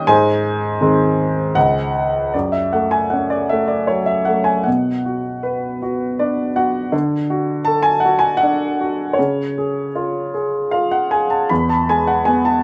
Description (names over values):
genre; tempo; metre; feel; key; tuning
classical, lyrical solo piano; 78 BPM; 3/4; rubato; F# minor; A4 = 443 Hz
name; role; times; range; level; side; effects
clear baby grand piano; solo; 0.0-12.6 s; C#2 to B5; -18 LUFS; equal; none
room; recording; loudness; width
light reverb; none; -18 LUFS; mono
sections
0.0-2.3 A section; 2.3-12.6 B section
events
grand piano fill 5.8-6.9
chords
0.1 G#; 1.6 C#5; 2.3 F#m; 4.7 Bm; 6.9 D; 9.2 C#; 11.5 E